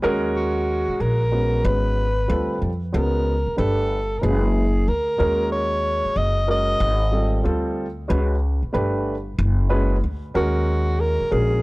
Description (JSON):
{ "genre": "hip hop, jazz-hop", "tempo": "93 BPM", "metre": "4/4", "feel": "swing 64% on 16ths", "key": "unclear", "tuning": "A4 = 440 Hz", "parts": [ { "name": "dark upright piano", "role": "accompaniment", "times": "0.0-11.6 s", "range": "G3 to B4", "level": "-24 LUFS", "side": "right 1 dB", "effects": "none" }, { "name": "upright bass", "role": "bass", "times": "0.0-11.6 s", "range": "F#1 to F2", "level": "-22 LUFS", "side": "equal", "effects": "none" }, { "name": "breathy alto saxophone", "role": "melody", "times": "0.4-11.6 s", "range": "F#4 to D#5", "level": "-24 LUFS", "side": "equal", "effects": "none" } ], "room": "small room ambience", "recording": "dry, gritty hardware recording, transformer saturation", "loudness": "-19 LUFS", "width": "side -22 dB against mid", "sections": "0.0-11.6 A section", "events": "none", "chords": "0.0 D#m7; 1.6 G#m7; 2.3 Dm7; 2.9 C#5; 3.6 Gadd9; 4.2 F#sus24; 5.2 D#m7; 6.8 G#9sus4; 7.4 Dm7; 8.1 C#5; 8.7 Gadd9; 9.4 F#sus24; 10.3 D#m7" }